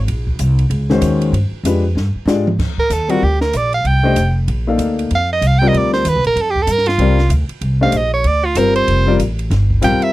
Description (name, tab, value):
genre	modal jazz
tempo	191 BPM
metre	4/4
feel	swing 61% on 8ths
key	C dorian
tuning	A4 = 440 Hz
part	upright bass	bass	0.0-10.0 s	F1 to Ab2	-16 LUFS	equal	none
part	open jazz drum kit	drums	0.1-10.1 s	crash cymbal, hi-hat, kick drum, ride cymbal, snare drum, toms	-25 LUFS	equal	none
part	warm baby grand piano	accompaniment	0.9-10.1 s	Eb3 to F5	-16 LUFS	left 3 dB	none
part	edgy soprano saxophone	melody	2.8-10.1 s	F4 to G5	-16 LUFS	right 2 dB	none
room	little or no reverb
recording	dry, close 1970s-style studio recording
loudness	-13 LUFS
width	side -17 dB against mid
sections	0.0-2.6 A section; 2.6-10.1 B section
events	drum fill 2.0-2.6; soprano saxophone solo 2.6-10.1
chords	0.0 Ebm11; 1.3 G7b9; 2.6 C9sus4